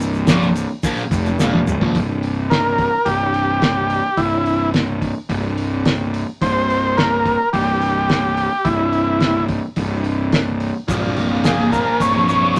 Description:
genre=psychedelic rock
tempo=107 BPM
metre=4/4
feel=straight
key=unclear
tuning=A4 = 441 Hz
part: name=fuzz picked electric bass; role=bass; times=0.0-12.6 s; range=C1 to F1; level=-23 LUFS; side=equal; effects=overdrive
part: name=tube shaker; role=percussion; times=0.0-1.8, 10.9-12.6 s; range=none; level=-41 LUFS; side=equal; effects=none
part: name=fuzz guitar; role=riff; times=0.3-2.0, 10.9-12.6 s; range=Bb2 to Bb3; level=-22 LUFS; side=equal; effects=distortion, phaser
part: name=cloth-damped thuddy drum kit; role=drums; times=0.3-12.6 s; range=hi-hat, kick drum, snare drum, toms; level=-23 LUFS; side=equal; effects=none
part: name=overdriven combo organ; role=melody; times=2.5-12.5 s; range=E4 to Db5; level=-20 LUFS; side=equal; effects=none
room=light reverb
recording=none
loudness=-18 LUFS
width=mono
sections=0.0-1.9 A section; 1.9-12.6 B section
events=drum fill 1.4-1.9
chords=0.0 Bbm/C; 1.9 C5; 10.9 Bbm/C

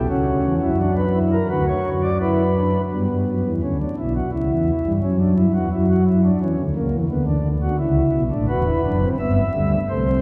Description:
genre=classical, baroque-style 3-part fugue for pipe organ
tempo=86 BPM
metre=4/4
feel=straight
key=unclear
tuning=A4 = 440 Hz
part: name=pipe organ, flutes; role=solo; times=0.0-10.2 s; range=E1 to E5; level=-20 LUFS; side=equal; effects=none
room=wet church reverb, RT60 3.7 s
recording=recorded in a church or concert hall, vinyl crackle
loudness=-20 LUFS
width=mono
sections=0.0-2.9 A section; 2.9-10.2 B section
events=none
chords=0.1 F#7/C#; 1.5 Bm/D; 2.9 G; 4.3 C#dim; 5.7 F#7; 7.1 Bm/D; 8.5 Em

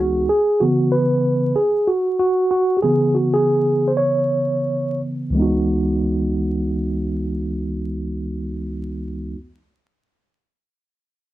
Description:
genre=hip hop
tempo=95 BPM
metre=4/4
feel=swing 62% on 16ths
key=C# minor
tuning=A4 = 440 Hz
part: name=mellow tine electric piano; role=accompaniment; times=0.0-9.4 s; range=C#2 to C#5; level=-18 LUFS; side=right 1 dB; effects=fast stereo tremolo, low-pass filter
room=moderate small room reverb, RT60 0.5 s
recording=dark, warm production, vinyl crackle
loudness=-17 LUFS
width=side -15 dB against mid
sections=0.3-5.4 A section; 5.4-7.9 B section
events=tine electric piano solo 0.3-5.4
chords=0.3 C#m7; 5.4 C#m11

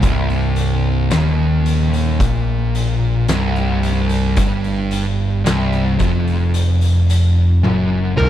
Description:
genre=stoner and doom metal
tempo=55 BPM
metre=4/4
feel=straight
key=C minor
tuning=A4 = 438 Hz
part: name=fuzz guitar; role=riff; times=0.0-8.3 s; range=C2 to Bb2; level=-18 LUFS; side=equal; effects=distortion
part: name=overdriven picked electric bass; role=bass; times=0.0-8.3 s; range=C1 to Bb1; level=-18 LUFS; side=equal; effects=none
part: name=oversized low-tuned drum kit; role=drums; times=0.0-8.3 s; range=hi-hat, kick drum, snare drum, toms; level=-23 LUFS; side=equal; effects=none
part: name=fuzz lead guitar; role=melody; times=8.2-8.3 s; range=Bb4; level=-17 LUFS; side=equal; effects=distortion
room=little or no reverb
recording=none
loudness=-14 LUFS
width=side -11 dB against mid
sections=0.0-8.3 A section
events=drum fill 7.6-8.3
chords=0.0 Cm

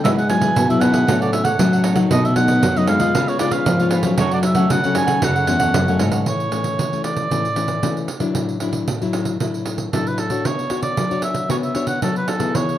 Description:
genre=samba and choro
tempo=115 BPM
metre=4/4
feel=straight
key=F# minor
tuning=A4 = 440 Hz
part: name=warm oboe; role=melody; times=0.0-12.8 s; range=A4 to G#5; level=-22 LUFS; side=right 2 dB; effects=none
part: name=cavaquinho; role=accompaniment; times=0.0-6.3 s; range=E#4 to F#5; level=-26 LUFS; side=right 4 dB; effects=none
part: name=nylon-string guitar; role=accompaniment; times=0.0-12.8 s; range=F#2 to C#5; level=-22 LUFS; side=left 5 dB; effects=none
part: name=nylon-string guitar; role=bass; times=0.0-6.2 s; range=E2 to A3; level=-19 LUFS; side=equal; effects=none
part: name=pandeiro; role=percussion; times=0.0-12.8 s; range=none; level=-23 LUFS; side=right 4 dB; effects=none
room=studio reverb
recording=dry, close 1970s-style studio recording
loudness=-16 LUFS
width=side -12 dB against mid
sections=0.0-6.3 A section; 6.3-12.8 B section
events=none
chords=0.0 Eadd9/G#; 1.1 F#m/A; 2.1 B7; 3.2 C#7; 4.2 F#m; 6.3 Dadd9/A; 10.5 Bmadd9

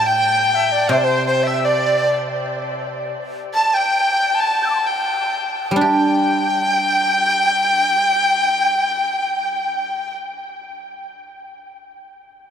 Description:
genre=chinese traditional, Chinese chamber ensemble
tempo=60-89 BPM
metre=4/4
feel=rubato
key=G zhi mode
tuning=A4 = 440 Hz
part: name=dizi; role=melody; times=0.0-10.1 s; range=C5 to G6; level=-20 LUFS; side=right 1 dB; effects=analog delay
part: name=clear erhu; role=second line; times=0.0-10.1 s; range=C5 to A5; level=-20 LUFS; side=left 2 dB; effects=none
part: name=guzheng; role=accompaniment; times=0.0-11.8 s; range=A2 to G4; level=-22 LUFS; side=right 1 dB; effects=none
room=wet huge ambient reverb, RT60 8.9 s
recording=dreamy mix soaked in reverb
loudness=-16 LUFS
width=side -8 dB against mid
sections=0.0-5.8 A section; 5.8-9.7 B section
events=slowing down 0.0-5.8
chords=none

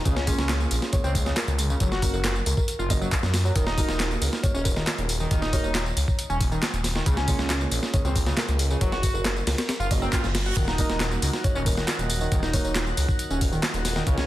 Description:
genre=breakbeat, breaks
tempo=137 BPM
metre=4/4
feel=straight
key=Eb minor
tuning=A4 = 440 Hz
part: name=overdriven synth lead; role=riff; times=0.1-14.3 s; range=Db3 to Gb4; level=-31 LUFS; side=equal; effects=wide subtle chorus, tape echo
part: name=phased detuned saw bass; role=bass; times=0.1-14.3 s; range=Eb1 to Gb2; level=-27 LUFS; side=equal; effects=phaser
part: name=breakbeat sampler-style drum kit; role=drums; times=0.1-14.3 s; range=hi-hat, kick drum, snare drum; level=-26 LUFS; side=equal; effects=none
part: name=punchy analog drum machine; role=drums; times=0.1-14.3 s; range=handclaps, hi-hat, tambourine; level=-31 LUFS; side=equal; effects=none
part: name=dark concert grand piano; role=stabs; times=0.3-12.7 s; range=Bb3 to Eb5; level=-35 LUFS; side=right 3 dB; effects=tape echo
part: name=kalimba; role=melody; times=0.9-12.7 s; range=Bb4 to Db5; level=-36 LUFS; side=left 1 dB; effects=telephone sound, vintage 12-bit sampler grit, tape echo
part: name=reverse cymbal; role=sound effects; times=9.9-10.6 s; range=none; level=-36 LUFS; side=right 5 dB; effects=none
part: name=tonewheel organ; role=sustained chords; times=10.6-14.3 s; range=Db3 to Gb4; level=-34 LUFS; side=equal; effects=slow rotary speaker, sidechain pumping
room=light reverb, digital ambience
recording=dense, heavily limited modern master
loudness=-22 LUFS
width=side -15 dB against mid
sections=0.0-14.3 A section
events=reverse cymbal 9.9-10.6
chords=0.1 Db6; 1.8 Gb; 3.6 Ebm; 7.1 Db6; 8.8 Gb; 10.6 Ebm

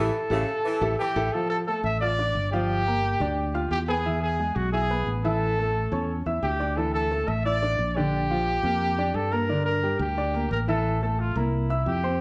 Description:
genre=latin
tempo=176 BPM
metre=4/4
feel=straight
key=unclear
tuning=A4 = 440 Hz
part: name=warm trumpet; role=melody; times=0.0-12.2 s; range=E4 to E5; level=-29 LUFS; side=equal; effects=plate reverb
part: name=clear saxophone section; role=second line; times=0.0-1.2 s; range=C#3 to E3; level=-35 LUFS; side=equal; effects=none
part: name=warm grand piano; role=accompaniment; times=0.0-12.2 s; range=D3 to F6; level=-31 LUFS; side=equal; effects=none
part: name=fingered electric bass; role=bass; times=0.0-12.2 s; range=G1 to G2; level=-30 LUFS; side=equal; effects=none
room=wet large studio reverb, RT60 0.9 s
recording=heard from further back in the room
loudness=-26 LUFS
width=mono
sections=0.0-1.3 A section; 1.3-12.2 B section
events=band accent 0.0-1.3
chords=0.0 A7(no3); 1.3 Dm; 2.7 Gm7; 4.0 E; 5.4 A; 6.8 Dsus2; 8.1 Bb; 9.5 Gm; 10.8 A5; 11.5 C7

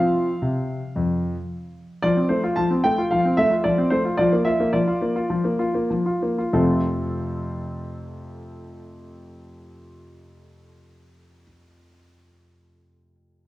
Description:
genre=classical-period piano sonatina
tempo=90-114 BPM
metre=4/4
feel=rubato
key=F major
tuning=A4 = 440 Hz
part: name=clear grand piano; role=solo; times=0.0-13.5 s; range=F2 to A5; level=-20 LUFS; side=equal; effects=none
room=wet recital hall reverb, RT60 1.6 s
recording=worn, warbling old tape, cassette tape, warbly pitch drift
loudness=-20 LUFS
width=side -16 dB against mid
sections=0.0-2.0 A section; 2.0-6.5 B section; 6.5-11.6 C section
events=slowing down 1.0-6.5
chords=0.0 F5; 2.0 F; 4.2 Bb/F; 6.5 F

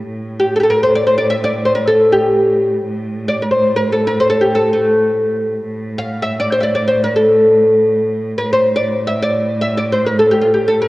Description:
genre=Persian modal ensemble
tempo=free time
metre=none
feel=none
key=A dastgah shur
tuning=A4 = 440 Hz
part: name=clear cello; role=drone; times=0.0-10.9 s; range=A2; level=-22 LUFS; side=right 1 dB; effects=none
part: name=oud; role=melody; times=0.4-10.9 s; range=A3 to F5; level=-13 LUFS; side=equal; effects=none
room=moderate concert hall reverb, RT60 2.4 s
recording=worn, warbling old tape, cassette tape, warbly pitch drift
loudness=-12 LUFS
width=side -18 dB against mid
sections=0.0-5.6 A section; 5.6-10.9 A section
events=none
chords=none

